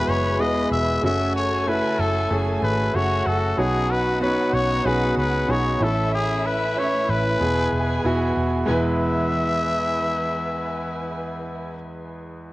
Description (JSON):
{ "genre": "piano-driven pop", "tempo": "94 BPM", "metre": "4/4", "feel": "swing 56% on 16ths", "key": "E major", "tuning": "A4 = 440 Hz", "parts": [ { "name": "growling trumpet", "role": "melody", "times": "0.0-11.7 s", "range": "G#4 to E5", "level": "-24 LUFS", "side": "left 2 dB", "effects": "none" }, { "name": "rich studio violin section", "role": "second line", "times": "0.0-11.7 s", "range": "E4 to B5", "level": "-32 LUFS", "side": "left 1 dB", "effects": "cassette tape, tape echo" }, { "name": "warm concert grand piano", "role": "accompaniment", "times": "0.0-12.5 s", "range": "E2 to C#5", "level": "-24 LUFS", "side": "right 1 dB", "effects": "cassette tape" }, { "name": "warm studio string section", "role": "sustained chords", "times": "0.0-11.7 s", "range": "E3 to B4", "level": "-34 LUFS", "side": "equal", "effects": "none" }, { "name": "vintage muted picked electric bass", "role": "bass", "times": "0.1-11.7 s", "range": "E1 to C#2", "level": "-26 LUFS", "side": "equal", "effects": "none" } ], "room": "moderate studio reverb, RT60 0.6 s", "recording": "home recording on cassette", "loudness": "-20 LUFS", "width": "side -18 dB against mid", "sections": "0.0-8.7 A section; 8.7-11.2 B section", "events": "none", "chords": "0.0 Eadd9; 1.0 F#m; 3.6 Badd9; 5.8 A; 7.4 E" }